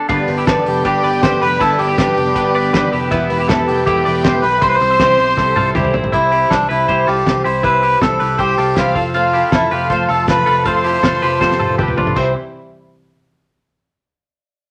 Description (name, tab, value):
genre	jangly indie pop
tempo	159 BPM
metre	4/4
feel	straight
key	C major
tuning	A4 = 440 Hz
part	muted studio string section	sustained chords	0.0-6.1, 9.1-12.3 s	C3 to G4	-30 LUFS	equal	none
part	twelve-string electric guitar	arpeggios	0.0-12.3 s	B3 to E5	-23 LUFS	equal	none
part	picked twelve-string acoustic guitar	accompaniment	0.1-12.3 s	C3 to C5	-26 LUFS	equal	none
part	warm analog keys	accompaniment	0.1-12.3 s	B3 to D5	-26 LUFS	equal	chorus
part	picked electric bass	bass	0.1-12.3 s	E1 to C2	-25 LUFS	equal	none
part	cloth-damped thuddy drum kit	drums	0.1-12.3 s	crash cymbal, hi-hat, kick drum, ride cymbal, snare drum, toms	-23 LUFS	equal	none
part	melodica	melody	0.7-11.8 s	D4 to C5	-18 LUFS	equal	none
part	rich studio violin section	second line	0.7-5.7, 8.4-11.8 s	E5 to C6	-27 LUFS	equal	none
room	wet studio reverb, RT60 0.8 s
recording	none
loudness	-15 LUFS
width	mono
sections	0.0-6.1 A section; 6.1-12.2 B section; 12.2-13.7 C section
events	drum fill 5.4-6.1, 11.4-12.2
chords	0.0 G; 3.1 Em; 4.6 C; 9.0 F; 12.2 C